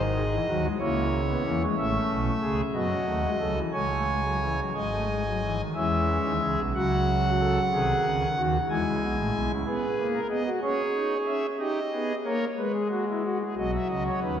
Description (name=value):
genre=classical, baroque-style 4-part fugue for pipe organ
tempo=61 BPM (dotted quarters)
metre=6/8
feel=straight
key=C# minor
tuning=A4 = 440 Hz
part: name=pipe organ, foundations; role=solo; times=0.0-14.4 s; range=G#1 to G#5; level=-24 LUFS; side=equal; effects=none
room=wet church reverb, RT60 3.1 s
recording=none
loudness=-24 LUFS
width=side -9 dB against mid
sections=0.0-5.8 A section; 5.8-13.6 B section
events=none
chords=0.0 G#7(no3); 0.8 C#m; 1.8 A; 2.7 F#m; 3.7 G#sus4/C#; 4.7 G#5; 5.8 C#m/E; 6.7 F#m/C#; 7.7 G#7/B#; 8.7 C#m; 9.6 G#m; 10.6 C#m; 11.6 D#7; 12.6 G#m; 13.6 B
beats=0.80 | 1.77 2.74 | 3.73 4.75 | 5.75 6.74 | 7.72 8.68 | 9.64 10.61 | 11.59 12.57 | 13.56